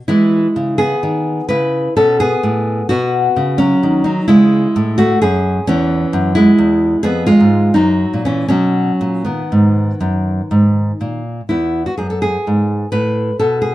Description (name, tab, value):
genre	classical, baroque-style dance for nylon-string guitar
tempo	78-88 BPM (dotted quarters)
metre	12/8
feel	rubato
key	E major, B major from 5.7 s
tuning	A4 = 440 Hz
part	nylon-string guitar	solo	0.0-13.7 s	E2 to B4	-12 LUFS	equal	none
room	moderate studio reverb, RT60 0.6 s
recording	dark, warm production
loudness	-12 LUFS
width	side -15 dB against mid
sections	0.0-11.5 A section; 11.5-13.7 A section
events	none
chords	0.1 E; 2.9 B; 4.3 C#m; 5.7 C#m/E; 7.0 Fdim; 7.8 F#; 8.5 B; 11.5 E